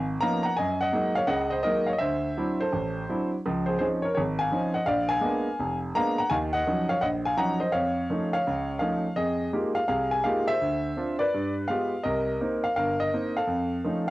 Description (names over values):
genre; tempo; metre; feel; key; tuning
solo jazz; 168 BPM; 4/4; swing 66% on 8ths; F minor from 9.2 s; A4 = 440 Hz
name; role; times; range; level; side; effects
clear concert grand piano; solo; 0.0-14.1 s; F1 to Bb5; -24 LUFS; equal; cassette tape
room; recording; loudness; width
moderate booth ambience, RT60 0.2 s; home recording on cassette; -24 LUFS; side -17 dB against mid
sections
0.0-9.2 A section; 9.2-14.1 B section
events
none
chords
0.0 Db13; 0.6 Gb69; 2.0 D9; 3.4 Dbmaj9; 4.9 Bb7b9; 6.3 Ebm9; 7.7 Faug7; 9.2 Fm11; 10.6 Dm13; 11.3 G7b9; 12.0 Cm7; 13.5 F7b13